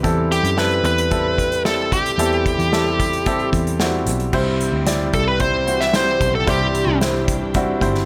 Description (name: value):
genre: piano-driven pop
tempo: 112 BPM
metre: 4/4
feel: straight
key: unclear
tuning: A4 = 440 Hz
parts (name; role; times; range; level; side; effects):
- clear baby grand piano; accompaniment; 0.0-8.1 s; G2 to D5; -24 LUFS; equal; none
- vintage muted picked electric bass; bass; 0.0-8.1 s; G1 to F#2; -26 LUFS; equal; none
- unplugged drum kit; drums; 0.0-8.0 s; crash cymbal, hi-hat, kick drum, snare drum; -26 LUFS; equal; none
- bluesy overdriven lead guitar; melody; 0.3-7.0 s; G4 to E5; -23 LUFS; equal; distortion
- warm studio string section; sustained chords; 4.3-8.1 s; E3 to G4; -32 LUFS; equal; none
room: light reverb, small room reverb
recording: none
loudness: -19 LUFS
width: mono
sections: 0.0-4.3 A section; 4.3-8.1 B section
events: none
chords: 0.0 Am7; 4.3 C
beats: | 0.04 0.58 1.11 1.65 | 2.18 2.72 3.26 3.79 | 4.33 4.87 5.40 5.94 | 6.47 7.01 7.55